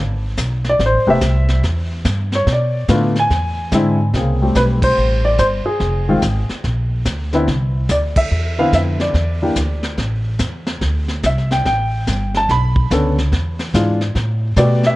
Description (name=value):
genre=jazz piano trio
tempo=144 BPM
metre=4/4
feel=swing 64% on 8ths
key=A minor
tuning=A4 = 441 Hz
part: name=upright bass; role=bass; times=0.0-15.0 s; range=E1 to B2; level=-18 LUFS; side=equal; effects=none
part: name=vintage brush drum kit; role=drums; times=0.4-15.0 s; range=brushed snare drum, hi-hat, kick drum, ride cymbal, snare drum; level=-23 LUFS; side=equal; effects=vintage 12-bit sampler grit
part: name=warm baby grand piano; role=melody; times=0.7-15.0 s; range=B2 to B5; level=-17 LUFS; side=left 1 dB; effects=none
room=light reverb, studio reverb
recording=cassette tape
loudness=-14 LUFS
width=side -18 dB against mid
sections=0.0-4.1 A section; 4.1-15.0 B section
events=grand piano solo 0.0-4.1; band accent 4.8, 8.1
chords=0.0 G#m; 0.8 Am7 (rootless); 2.5 Bm7b5; 3.3 Eaug7; 4.1 Am9; 5.8 Fm; 6.6 Bb; 7.5 Cmaj9; 9.2 E7(no3); 10.0 A5; 10.8 D7sus4; 12.5 Bm9; 13.3 E7b9; 14.2 Asus2